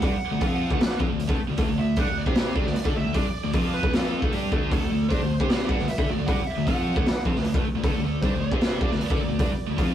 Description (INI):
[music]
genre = hard rock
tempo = 154 BPM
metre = 4/4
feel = straight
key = unclear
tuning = A4 = 440 Hz
[part]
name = smooth overdriven lead guitar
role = melody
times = 0.0-9.9 s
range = A4 to F#5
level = -33 LUFS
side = right 4 dB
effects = none
[part]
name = crunchy overdriven guitar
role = riff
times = 0.0-9.9 s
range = D3 to C5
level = -29 LUFS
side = left 4 dB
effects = none
[part]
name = scooped high-gain guitar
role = riff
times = 0.0-9.9 s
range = D3 to C5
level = -29 LUFS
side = right 4 dB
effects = distortion
[part]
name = fuzz fingered electric bass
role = bass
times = 0.0-9.9 s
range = D2 to D3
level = -33 LUFS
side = equal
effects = none
[part]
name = raw garage drum kit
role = drums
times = 0.0-9.9 s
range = hi-hat, kick drum, snare drum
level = -25 LUFS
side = equal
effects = none
[sound]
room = moderate small room reverb, RT60 0.5 s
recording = rough rehearsal-room recording, warm saturation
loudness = -22 LUFS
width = side -10 dB against mid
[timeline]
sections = 0.0-9.9 A section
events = none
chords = 0.0 D